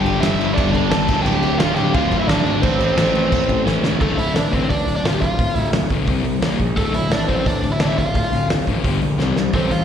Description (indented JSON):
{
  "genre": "punk rock",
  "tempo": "174 BPM",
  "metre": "4/4",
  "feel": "straight",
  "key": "D minor from 4.0 s",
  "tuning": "A4 = 438 Hz",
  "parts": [
    { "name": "overdriven electric guitar", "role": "melody", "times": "0.0-9.8 s", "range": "A3 to A5", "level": "-22 LUFS", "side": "right 1 dB", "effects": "slapback echo" },
    { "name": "distorted electric guitar", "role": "riff", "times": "0.0-4.0 s", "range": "D2 to A3", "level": "-28 LUFS", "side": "right 2 dB", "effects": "none" },
    { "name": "sludgy distorted guitar", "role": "riff", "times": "0.0-9.8 s", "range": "D2 to C4", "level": "-22 LUFS", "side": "left 9 dB", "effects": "overdrive, slapback echo" },
    { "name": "sludgy distorted guitar", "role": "riff", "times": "0.0-4.0 s", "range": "D2 to A3", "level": "-24 LUFS", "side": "right 12 dB", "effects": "overdrive" },
    { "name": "fuzz picked electric bass", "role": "bass", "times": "0.0-9.8 s", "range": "D1 to C#2", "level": "-22 LUFS", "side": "right 2 dB", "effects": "overdrive" },
    { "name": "loose indie drum kit", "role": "drums", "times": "0.1-9.8 s", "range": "crash cymbal, hi-hat, kick drum, snare drum", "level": "-22 LUFS", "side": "right 1 dB", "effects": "none" }
  ],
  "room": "little or no reverb",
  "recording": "live gig heard through the venue's PA, recital hall reverb",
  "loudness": "-16 LUFS",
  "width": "side -8 dB against mid",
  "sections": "0.0-4.0 A section; 4.0-9.8 B section",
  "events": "drum fill 3.7-4.0, 9.2-9.5",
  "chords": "0.0 G5; 1.1 Dm; 2.6 Am; 4.0 Dm; 6.1 C5; 6.4 Bb5; 6.8 Dm; 8.8 G5; 9.2 C5"
}